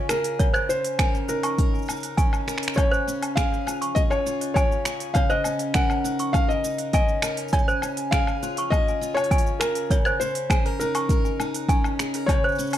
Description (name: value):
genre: folktronica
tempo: 101 BPM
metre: 4/4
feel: straight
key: unclear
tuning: A4 = 440 Hz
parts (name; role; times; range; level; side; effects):
- felt-muted upright piano; melody; 0.0-12.8 s; Bb4 to Ab5; -27 LUFS; left 1 dB; ping-pong delay
- picked steel-string acoustic guitar; arpeggios; 0.0-12.8 s; Db3 to Bb4; -29 LUFS; left 2 dB; ping-pong delay
- organic electronic drum kit; drums; 0.1-12.8 s; finger snaps, hi-hat, shaker, woodblock; -30 LUFS; equal; none
- toy piano; second line; 0.4-12.6 s; C5 to Db6; -29 LUFS; right 2 dB; ping-pong delay
- electronic kick drum; drums; 0.4-12.4 s; none; -22 LUFS; equal; none
room: light reverb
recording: dark, warm production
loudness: -21 LUFS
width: side -11 dB against mid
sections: 0.0-12.8 A section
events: none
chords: 0.4 Eb5/Db; 2.8 Db; 5.2 Gb6/Db; 7.5 Db; 9.9 Eb5/Db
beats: | 0.40 0.99 1.59 2.18 | 2.78 3.37 3.96 4.56 | 5.15 5.75 6.34 6.93 | 7.53 8.12 8.72 9.31 | 9.91 10.50 11.09 11.69 | 12.28